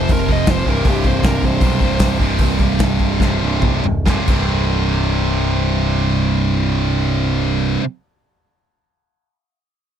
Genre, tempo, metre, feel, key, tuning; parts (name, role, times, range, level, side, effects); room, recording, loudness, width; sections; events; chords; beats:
heavy metal; 135-160 BPM; 4/4; straight; A4 = 440 Hz
bluesy overdriven lead guitar; melody; 0.0-2.1 s; G4 to Eb5; -23 LUFS; left 1 dB; distortion, slapback echo
high-gain distorted guitar; riff; 0.0-7.8 s; C2 to F3; -22 LUFS; left 12 dB; distortion
high-gain distorted guitar; riff; 0.0-7.8 s; C2 to F3; -20 LUFS; right 13 dB; distortion
growling picked electric bass; bass; 0.0-7.8 s; C1 to B1; -20 LUFS; equal; overdrive
modern studio drum kit; drums; 0.1-4.4 s; crash cymbal, hi-hat, kick drum, snare drum, toms; -18 LUFS; equal
little or no reverb; -14 LUFS; side -9 dB against mid
0.0-4.1 A section; 4.1-7.6 B section
lead electric guitar solo 0.0-4.1; slowing down 0.9-4.1; drum fill 3.2-4.1
0.0 F5; 0.7 C5
0.10 0.47 | 0.85 1.23 1.61 2.00 | 2.39 2.79 3.20 3.62 | 4.06 4.51 4.95 5.39 | 5.84 6.28 6.73 7.17